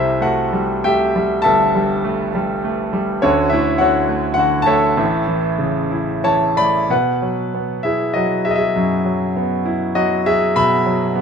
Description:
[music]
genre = classical, lyrical solo piano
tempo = 89-104 BPM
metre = 3/4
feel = rubato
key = A major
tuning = A4 = 441 Hz
[part]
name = bright grand piano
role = solo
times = 0.0-11.2 s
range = G1 to B5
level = -15 LUFS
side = equal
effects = none
[sound]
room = moderate studio reverb, RT60 0.6 s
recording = minimal, uncompressed stereo recording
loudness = -15 LUFS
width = side -6 dB against mid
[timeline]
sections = 0.0-6.9 A section; 6.9-11.2 B section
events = none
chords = 0.0 C6; 3.2 Dmaj7; 5.0 A; 6.9 Bsus4

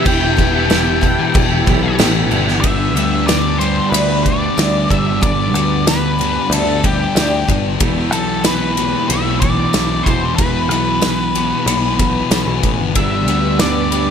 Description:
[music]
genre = rock, shoegaze and dream pop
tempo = 93 BPM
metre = 4/4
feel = straight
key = G major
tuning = A4 = 440 Hz
[part]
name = octave-fuzz lead guitar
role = melody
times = 0.0-14.1 s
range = G4 to G5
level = -21 LUFS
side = left 2 dB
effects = distortion, tape echo
[part]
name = string machine, violas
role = sustained chords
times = 0.0-2.6, 12.9-14.1 s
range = G4 to B5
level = -25 LUFS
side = right 1 dB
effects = ensemble chorus
[part]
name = picked twelve-string acoustic guitar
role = arpeggios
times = 0.0-14.1 s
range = E3 to G4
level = -26 LUFS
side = left 1 dB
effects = ensemble chorus, tape echo
[part]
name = biting overdriven guitar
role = riff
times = 0.0-14.1 s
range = E3 to G4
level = -22 LUFS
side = right 14 dB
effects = reverse reverb
[part]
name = thick fuzz guitar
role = riff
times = 0.0-14.1 s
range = E2 to G3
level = -20 LUFS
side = left 10 dB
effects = distortion, lush chorus
[part]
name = picked electric bass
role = bass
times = 0.1-14.1 s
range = E1 to D2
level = -20 LUFS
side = right 1 dB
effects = none
[part]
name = loose indie drum kit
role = drums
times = 0.1-14.1 s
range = crash cymbal, kick drum, ride cymbal, snare drum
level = -18 LUFS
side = equal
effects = none
[part]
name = tambourine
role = percussion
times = 0.7-13.7 s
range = none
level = -29 LUFS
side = right 10 dB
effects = none
[sound]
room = light reverb, small room ambience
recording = none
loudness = -13 LUFS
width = side -7 dB against mid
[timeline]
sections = 0.0-2.6 A section; 2.6-14.1 B section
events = none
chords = 0.0 Em; 2.6 G; 7.8 Em; 13.0 G

